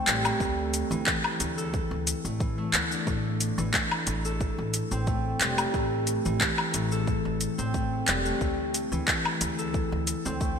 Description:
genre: organic downtempo.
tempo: 90 BPM.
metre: 4/4.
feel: swing 53% on 16ths.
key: A minor.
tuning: A4 = 439 Hz.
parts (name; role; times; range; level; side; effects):
concert harp; arpeggios; 0.0-10.6 s; E3 to A4; -29 LUFS; left 1 dB; ping-pong delay.
upright bass; bass; 0.1-10.6 s; E1 to D2; -32 LUFS; equal; tube saturation.
deep house drum kit; drums; 0.1-10.6 s; handclaps, hi-hat, shaker, woodblock; -28 LUFS; left 1 dB; overdrive, gated reverb.
electronic kick drum; drums; 0.4-10.6 s; none; -31 LUFS; equal; overdrive.
room: moderate lush hall reverb, RT60 2.9 s.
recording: bright 1980s-style digital production.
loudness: -25 LUFS.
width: side -6 dB against mid.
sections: 0.0-10.6 A section.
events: none.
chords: 0.0 D5; 3.1 Am7; 8.4 D5.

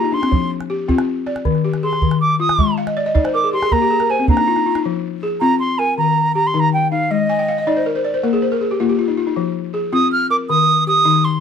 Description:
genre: west african traditional, West African string and xylophone music.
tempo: 106 BPM (dotted quarters).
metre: 12/8.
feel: straight.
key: F dorian.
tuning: A4 = 439 Hz.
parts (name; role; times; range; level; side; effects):
concert flute; melody; 0.0-11.4 s; Eb5 to F6; -16 LUFS; right 3 dB; none.
balafon; arpeggios; 0.0-11.4 s; Eb3 to Ab5; -18 LUFS; left 4 dB; none.
calabash; percussion; 0.2-4.8 s; none; -18 LUFS; right 3 dB; none.
room: light reverb.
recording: dark, warm production.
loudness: -15 LUFS.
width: side -7 dB against mid.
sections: 0.0-4.8 A section; 4.8-11.4 B section.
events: balafon fill 0.0-0.3, 2.8-4.8, 7.3-9.4; flute solo 0.0-4.8.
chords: 0.3 F5; 1.5 Eb; 2.6 Ab5; 3.7 N.C.; 4.8 Fm; 6.0 Eb; 7.1 Ab5; 8.2 N.C.; 9.4 Fm; 10.5 Eb.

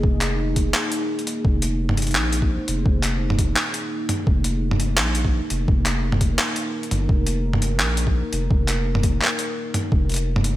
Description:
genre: half-time drum and bass.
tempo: 170 BPM.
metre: 4/4.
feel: swing 53% on 16ths, half-time.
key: F minor.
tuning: A4 = 441 Hz.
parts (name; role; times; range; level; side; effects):
dark analog pad; sustained chords; 0.0-10.6 s; Bb3 to Eb5; -27 LUFS; equal; chorus, sidechain pumping.
saturated sub bass; bass; 0.0-10.6 s; F1 to Bb1; -23 LUFS; equal; none.
electronic kick drum; drums; 0.0-10.0 s; none; -20 LUFS; equal; overdrive.
boom bap sampler-style drum kit; drums; 0.2-10.5 s; handclaps, hi-hat, toms; -23 LUFS; equal; overdrive.
room: light reverb.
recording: bright 1980s-style digital production.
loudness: -19 LUFS.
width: side -15 dB against mid.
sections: 0.0-10.6 A section.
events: break 1.1-1.4.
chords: 0.0 Fm.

